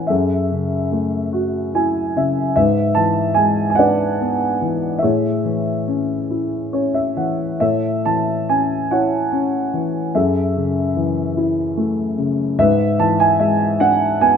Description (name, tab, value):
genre	classical, lyrical solo piano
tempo	48 BPM (dotted quarters)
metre	6/8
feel	rubato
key	A major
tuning	A4 = 441 Hz
part	dark grand piano	solo	0.0-14.4 s	F#2 to A5	-16 LUFS	equal	none
room	moderate studio reverb, RT60 0.8 s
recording	none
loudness	-16 LUFS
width	side -7 dB against mid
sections	0.0-14.4 A section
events	grand piano fill 1.3-2.6, 6.3-7.6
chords	0.1 F#m9; 2.6 E7/G#; 5.0 Amaj7; 10.1 F#m9; 12.6 E7/G#